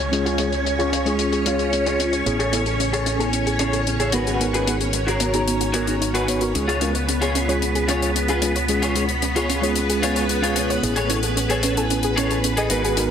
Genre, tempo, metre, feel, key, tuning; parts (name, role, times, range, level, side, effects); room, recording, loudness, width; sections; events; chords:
nu-disco, nu disco; 112 BPM; 4/4; straight; Db mixolydian; A4 = 440 Hz
string machine, full ensemble; sustained chords; 0.0-13.1 s; Cb4 to Db5; -26 LUFS; equal; phaser, ensemble chorus
soft round pluck; arpeggios; 0.0-13.1 s; Cb4 to Db5; -28 LUFS; right 2 dB; chorus, ping-pong delay
fingered electric bass with an envelope filter; bass; 0.0-13.1 s; Ab1 to Db2; -26 LUFS; equal
downlifter; sound effects; 0.0-2.3 s; -40 LUFS; equal
mellow tine electric piano; accompaniment; 0.1-13.1 s; Ab3 to Bb5; -25 LUFS; equal; medium stereo tremolo, vintage 12-bit sampler grit, ping-pong delay
hi-hat; drums; 0.1-13.1 s; -27 LUFS; left 6 dB; low-pass filter on hats, low-pass filter on snare, low-pass filter on room
electric guitar at the edge of break-up; riff; 0.3-13.0 s; F4 to F5; -26 LUFS; left 2 dB; ensemble chorus, low-pass filter, ping-pong delay
moderate lush hall reverb, RT60 2.0 s; heavily compressed radio sound, multiband compression; -18 LUFS; side -8 dB against mid
0.0-13.1 A section
filter sweep on clean electric guitar 0.0-13.1; filter sweep on synth arpeggio sound 0.0-13.1; clean electric guitar fill 1.2-2.3
0.0 Db; 2.3 Amaj7; 4.1 Abm7; 6.5 Db; 10.8 Amaj7